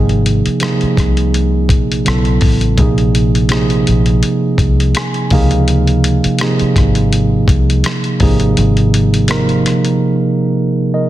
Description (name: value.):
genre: R&B, neo-soul.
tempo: 83 BPM.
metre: 4/4.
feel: swing 54% on 16ths.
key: unclear.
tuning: A4 = 440 Hz.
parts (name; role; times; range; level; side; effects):
mellow tine electric piano; accompaniment; 0.0-11.1 s; C3 to Ab5; -14 LUFS; right 2 dB; none.
vintage muted fingered electric bass; bass; 0.0-10.0 s; G1 to Db2; -14 LUFS; left 1 dB; none.
dusty soul sampler-style drum kit; drums; 0.1-10.0 s; hi-hat, kick drum, rim click; -16 LUFS; left 1 dB; soft clipping on snare.
room: light reverb, digital ambience.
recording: dense, heavily limited modern master.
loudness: -11 LUFS.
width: side -14 dB against mid.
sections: 0.0-11.1 A section.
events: tine electric piano fill 4.6-5.7.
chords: 0.0 Abadd9; 2.1 Bsus2; 2.8 Bbsus2; 5.3 Dbmaj9; 8.2 Abadd9.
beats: 0.61 1.33 2.06 | 2.78 3.50 4.23 4.95 | 5.67 6.39 7.12 7.84 | 8.56 9.29 10.01 10.73.